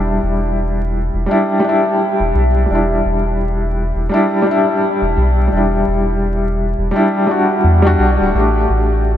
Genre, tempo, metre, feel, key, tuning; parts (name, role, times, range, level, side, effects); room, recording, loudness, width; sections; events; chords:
trip hop; 85 BPM; 4/4; swing 58% on 16ths; E minor; A4 = 441 Hz
felt-muted upright piano; accompaniment; 0.0-9.2 s; G3 to G4; -15 LUFS; left 1 dB; tremolo, tape echo
round analog bass; bass; 0.0-9.2 s; D1 to E2; -16 LUFS; equal; tube saturation
moderate huge ambient reverb, RT60 4.3 s; dreamy mix soaked in reverb, vinyl crackle; -13 LUFS; side -11 dB against mid
0.0-9.2 A section
0.0 Em7; 8.3 A7sus4